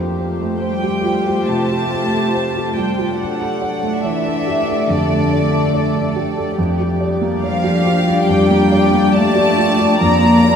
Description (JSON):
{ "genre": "cinematic, emotional film score for orchestra", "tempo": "70 BPM", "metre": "4/4", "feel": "rubato", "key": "F major", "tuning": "A4 = 439 Hz", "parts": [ { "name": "warm symphonic violin section", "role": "second line", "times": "0.0-10.6 s", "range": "F4 to D5", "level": "-22 LUFS", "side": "left 2 dB", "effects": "none" }, { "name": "dark symphonic viola section", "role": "accompaniment", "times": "0.0-10.6 s", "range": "G3 to F4", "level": "-22 LUFS", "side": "left 3 dB", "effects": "none" }, { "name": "felt-muted upright piano", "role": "accompaniment", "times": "0.0-10.6 s", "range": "F2 to D5", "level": "-19 LUFS", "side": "right 2 dB", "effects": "none" }, { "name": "rich symphonic violin section", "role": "melody", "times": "0.6-10.6 s", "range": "D5 to Bb5", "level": "-21 LUFS", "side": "equal", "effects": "none" }, { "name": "warm symphonic cello section", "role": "bass", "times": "0.6-10.6 s", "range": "D3 to Bb3", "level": "-19 LUFS", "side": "equal", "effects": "none" } ], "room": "wet cathedral reverb, RT60 7.5 s", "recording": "in a vast, echoing space", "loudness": "-14 LUFS", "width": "side -7 dB against mid", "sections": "0.0-10.6 A section", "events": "none", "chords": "0.0 Fadd9; 3.2 D; 6.6 Gm/F; 10.0 Bb/F", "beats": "0.61 1.48 2.34 | 3.19 4.04 4.88 5.73 | 6.58 7.43 8.28 9.14 | 10.01" }